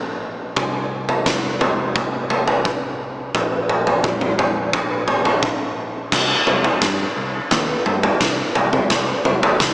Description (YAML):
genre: post-rock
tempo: 86 BPM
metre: 4/4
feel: straight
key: C minor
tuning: A4 = 439 Hz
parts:
  - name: picked electric bass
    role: bass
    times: 0.0-9.7 s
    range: Bb1 to G2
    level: -29 LUFS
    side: equal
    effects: none
  - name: oversized low-tuned drum kit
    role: drums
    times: 0.6-9.7 s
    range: crash cymbal, kick drum, snare drum, toms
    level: -17 LUFS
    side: equal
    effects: none
room: light reverb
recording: small speaker sound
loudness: -17 LUFS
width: side -24 dB against mid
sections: 0.0-6.1 A section; 6.1-9.7 B section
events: build-up 6.1-9.7; drum fill 6.1-9.7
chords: none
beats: | 0.57 1.27 1.96 2.65 | 3.35 4.04 4.74 5.43 | 6.13 6.82 7.52 8.21 | 8.91 9.60